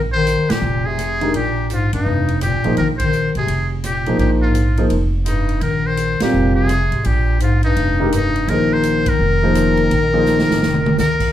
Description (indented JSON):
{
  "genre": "modal jazz",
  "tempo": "168 BPM",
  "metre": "4/4",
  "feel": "swing 64% on 8ths",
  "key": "Bb mixolydian",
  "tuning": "A4 = 441 Hz",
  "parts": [
    { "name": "dark bass clarinet", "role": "second line", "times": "0.0-11.3 s", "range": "G2 to Eb3", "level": "-20 LUFS", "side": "left 3 dB", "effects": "none" },
    { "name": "upright bass", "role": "bass", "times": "0.0-11.3 s", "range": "F1 to F2", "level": "-20 LUFS", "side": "right 1 dB", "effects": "none" },
    { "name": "trumpet with metal mute", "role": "melody", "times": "0.1-11.3 s", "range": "Eb4 to C5", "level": "-21 LUFS", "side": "equal", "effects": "plate reverb" },
    { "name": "swinging big-band drum kit", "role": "drums", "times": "0.3-11.3 s", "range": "crash cymbal, hi-hat, kick drum, ride cymbal, rim click, snare drum, toms", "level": "-26 LUFS", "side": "right 2 dB", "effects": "none" },
    { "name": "warm grand piano", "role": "accompaniment", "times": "1.2-10.6 s", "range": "Eb3 to D5", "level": "-19 LUFS", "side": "equal", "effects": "none" }
  ],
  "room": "wet club reverb, RT60 0.8 s",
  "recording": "heard from further back in the room",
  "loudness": "-14 LUFS",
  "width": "side -12 dB against mid",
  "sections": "0.0-11.3 A section",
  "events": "band accent 0.4, 2.9, 6.2, 9.0; drum fill 10.3-11.0",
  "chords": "0.0 Bb13sus4"
}